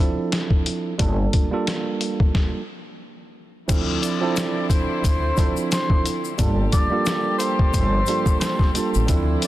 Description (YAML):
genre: hip hop, boom-bap hip-hop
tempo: 89 BPM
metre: 4/4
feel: swing 57% on 16ths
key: unclear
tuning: A4 = 444 Hz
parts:
  - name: tine electric piano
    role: accompaniment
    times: 0.0-9.5 s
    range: F3 to A4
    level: -25 LUFS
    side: right 4 dB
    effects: high-pass filter, low-pass filter
  - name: trip hop sampler-style drum kit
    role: drums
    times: 0.3-9.5 s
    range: crash cymbal, hi-hat, kick drum, snare drum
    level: -21 LUFS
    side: left 1 dB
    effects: none
  - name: upright bass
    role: bass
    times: 1.0-9.3 s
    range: G1 to D2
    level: -22 LUFS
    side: equal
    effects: none
  - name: warm symphonic string section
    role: sustained chords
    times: 3.7-9.5 s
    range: D3 to A4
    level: -32 LUFS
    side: left 2 dB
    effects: high-pass filter, low-pass filter
  - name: tube shaker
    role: percussion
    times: 3.7-9.5 s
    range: none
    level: -37 LUFS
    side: left 10 dB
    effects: none
  - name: breathy tenor saxophone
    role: melody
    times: 4.0-9.5 s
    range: C5 to D5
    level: -26 LUFS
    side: left 1 dB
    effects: high-pass filter, low-pass filter, ping-pong delay
room: little or no reverb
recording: dense, heavily limited modern master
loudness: -19 LUFS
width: side -15 dB against mid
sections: 0.0-3.7 A section; 3.7-9.5 B section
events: stop 2.3-3.7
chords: 0.0 Dm9; 1.0 Gm9; 3.7 Dm9; 6.4 Gm9